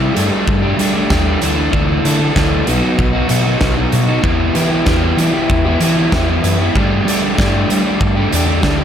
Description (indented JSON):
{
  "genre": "indie rock",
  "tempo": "96 BPM",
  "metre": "4/4",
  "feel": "straight",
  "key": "G major",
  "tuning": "A4 = 440 Hz",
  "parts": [
    { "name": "crunchy overdriven guitar", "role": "riff", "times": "0.0-8.8 s", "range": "B2 to A4", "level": "-15 LUFS", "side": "equal", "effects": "spring reverb" },
    { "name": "hollow-body short-scale picked electric bass", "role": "bass", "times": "0.0-8.8 s", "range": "B1 to G3", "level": "-18 LUFS", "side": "equal", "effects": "none" },
    { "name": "big rock drum kit", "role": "drums", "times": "0.2-8.8 s", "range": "hi-hat, kick drum, snare drum", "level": "-18 LUFS", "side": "equal", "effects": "none" }
  ],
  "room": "little or no reverb",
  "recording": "none",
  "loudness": "-12 LUFS",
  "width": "side -9 dB against mid",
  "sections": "0.0-8.8 A section",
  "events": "none",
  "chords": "0.2 Gsus2; 1.4 Dsus2; 2.7 B; 4.2 Em; 6.7 Gsus2"
}